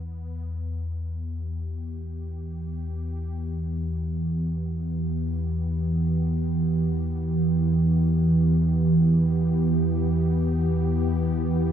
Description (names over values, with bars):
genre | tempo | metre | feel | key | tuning
dark ambient drone | free time | none | none | E minor | A4 = 439 Hz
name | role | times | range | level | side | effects
sweeping resonant pad | sustained chords | 0.0-11.7 s | E3 to G4 | -31 LUFS | left 2 dB | chorus
deep rumbling drone | drone | 0.0-11.7 s | E2 to E3 | -23 LUFS | right 1 dB | built-in reverb, phaser
room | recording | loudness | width
wet cathedral reverb, RT60 5.2 s | in a vast, echoing space, cassette tape | -22 LUFS | side -9 dB against mid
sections
0.0-11.7 A section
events
fade-in on analog synth pad 0.0-11.7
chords
0.0 Em